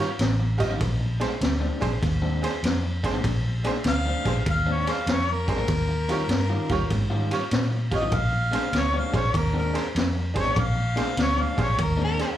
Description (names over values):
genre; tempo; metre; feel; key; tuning
electric blues shuffle; 98 BPM; 4/4; swing 66% on 8ths; Bb mixolydian; A4 = 440 Hz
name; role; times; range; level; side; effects
tack piano; accompaniment; 0.0-12.3 s; D4 to Eb5; -31 LUFS; right 5 dB; slapback echo
electric guitar through a small old amp; riff; 0.0-12.2 s; Bb2 to F4; -32 LUFS; left 4 dB; slapback echo
raw garage drum kit; drums; 0.0-12.3 s; kick drum, ride cymbal, snare drum; -27 LUFS; equal; none
vintage muted fingered electric bass; bass; 0.2-12.2 s; A1 to Bb2; -25 LUFS; equal; none
warm harmonica; melody; 3.9-12.3 s; Bb4 to F5; -28 LUFS; left 1 dB; overdrive, slapback echo
room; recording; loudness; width
little or no reverb; live gig heard through the venue's PA, club reverb; -22 LUFS; side -12 dB against mid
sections
0.0-12.4 A section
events
none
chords
0.0 Eb9; 0.8 Bb9; 5.7 Eb9; 8.1 Bb9